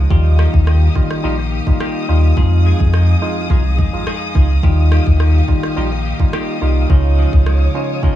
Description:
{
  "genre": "dancehall",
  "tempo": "106 BPM",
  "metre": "4/4",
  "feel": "straight",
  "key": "unclear",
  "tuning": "A4 = 440 Hz",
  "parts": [
    { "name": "warm studio string section", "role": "sustained chords", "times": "0.0-8.2 s", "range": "G4 to Eb6", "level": "-27 LUFS", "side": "left 2 dB", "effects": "sidechain pumping" },
    { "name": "clean electric guitar", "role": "arpeggios", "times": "0.0-8.2 s", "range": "F2 to Ab4", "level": "-23 LUFS", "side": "left 6 dB", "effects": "analog delay" },
    { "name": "sub bass with octave", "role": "bass", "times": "0.0-8.2 s", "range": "G1 to F2", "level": "-13 LUFS", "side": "equal", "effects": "none" },
    { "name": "percussive organ stab", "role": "accompaniment", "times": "0.1-8.2 s", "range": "G3 to F4", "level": "-23 LUFS", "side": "right 6 dB", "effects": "chorus, sidechain pumping" },
    { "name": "afro-pop drum kit", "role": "drums", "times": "0.1-8.2 s", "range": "kick drum, rim click", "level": "-16 LUFS", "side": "equal", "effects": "none" }
  ],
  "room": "digital ambience",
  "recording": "echo-heavy mix",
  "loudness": "-12 LUFS",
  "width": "side -12 dB against mid",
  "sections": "0.0-8.2 A section",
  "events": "none",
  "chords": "0.1 Ebadd9; 2.4 Fm7; 4.6 Ebadd9; 6.9 Dbadd9",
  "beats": "| 0.11 0.67 1.24 1.80 | 2.37 2.94 3.50 4.07 | 4.63 5.20 5.77 6.33 | 6.90 7.46 8.03"
}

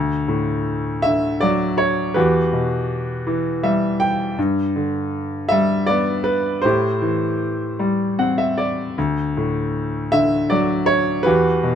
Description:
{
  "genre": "classical, lyrical solo piano",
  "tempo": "53 BPM (dotted quarters)",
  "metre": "6/8",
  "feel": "uneven beats, rubato",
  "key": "D major",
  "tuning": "A4 = 440 Hz",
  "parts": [
    { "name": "clear grand piano", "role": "solo", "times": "0.0-11.8 s", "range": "D2 to G5", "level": "-17 LUFS", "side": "equal", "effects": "none" }
  ],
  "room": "little or no reverb",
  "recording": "close, detailed microphones",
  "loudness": "-17 LUFS",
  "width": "side -8 dB against mid",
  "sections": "0.0-11.8 A section",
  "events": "grand piano fill 3.3-4.4, 7.8-9.0",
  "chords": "0.0 D; 2.2 Emadd9; 4.4 G; 6.6 Am7; 9.0 D",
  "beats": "1.05 | 2.17 3.26 | 4.38 5.50 | 6.63 7.79 | 8.97 10.13 | 11.26"
}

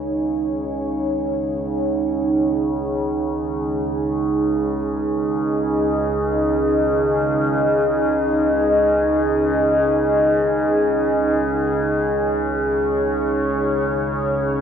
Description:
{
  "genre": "dark ambient drone",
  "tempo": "free time",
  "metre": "none",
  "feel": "none",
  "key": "unclear",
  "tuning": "A4 = 438 Hz",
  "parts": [
    { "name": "deep dark ambient pad", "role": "sustained chords", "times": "0.0-14.6 s", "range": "D#4 to D#5", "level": "-18 LUFS", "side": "right 1 dB", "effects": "chorus, built-in reverb" },
    { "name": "overtone-sweeping drone", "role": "drone", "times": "0.0-14.6 s", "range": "C#2 to C#3", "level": "-25 LUFS", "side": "left 2 dB", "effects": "chorus, built-in reverb" }
  ],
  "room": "wet plate reverb, RT60 2.9 s",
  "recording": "dreamy mix soaked in reverb",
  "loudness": "-18 LUFS",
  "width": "side -8 dB against mid",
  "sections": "0.0-14.6 A section",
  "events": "fade-in on synth drone 0.0-14.6",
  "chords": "0.0 C#sus2",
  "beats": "free time"
}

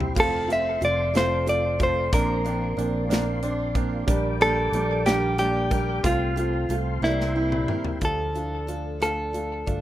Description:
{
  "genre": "six-eight pop ballad",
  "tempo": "61 BPM (dotted quarters)",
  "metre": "6/8",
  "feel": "straight",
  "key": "F major",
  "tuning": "A4 = 438 Hz",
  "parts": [
    { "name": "warm concert grand piano", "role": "accompaniment", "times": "0.0-9.8 s", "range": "G3 to F4", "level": "-29 LUFS", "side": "right 4 dB", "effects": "none" },
    { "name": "tonewheel organ", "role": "sustained chords", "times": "0.0-8.0 s", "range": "Bb3 to D6", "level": "-35 LUFS", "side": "left 1 dB", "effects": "chorus vibrato, slow rotary speaker" },
    { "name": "picked steel-string acoustic guitar", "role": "arpeggios", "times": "0.0-9.8 s", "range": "F3 to Bb4", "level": "-35 LUFS", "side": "left 4 dB", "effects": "digital delay" },
    { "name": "fingered electric bass", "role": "bass", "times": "0.0-9.8 s", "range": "F1 to D2", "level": "-28 LUFS", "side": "equal", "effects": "none" },
    { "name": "modern studio drum kit", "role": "drums", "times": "0.0-9.8 s", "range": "crash cymbal, hi-hat, kick drum, rim click, snare drum, toms", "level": "-28 LUFS", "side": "equal", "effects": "none" },
    { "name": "direct-recorded clean electric guitar", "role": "melody", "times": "0.2-9.8 s", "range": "E4 to E5", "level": "-24 LUFS", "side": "equal", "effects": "warbly pitch drift, digital delay" }
  ],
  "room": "studio ambience",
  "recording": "rough home demo mix",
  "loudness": "-22 LUFS",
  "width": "side -13 dB against mid",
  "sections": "0.0-8.0 A section; 8.0-9.8 B section",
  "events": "drum fill 0.0, 7.0-8.0",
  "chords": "0.2 F; 2.1 Bbadd9; 4.1 Gm/Bb; 6.0 F/C; 7.0 C7; 8.0 Dm",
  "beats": "| 0.17 1.15 | 2.13 3.11 | 4.08 5.05 | 6.03 7.02 | 8.02 9.01"
}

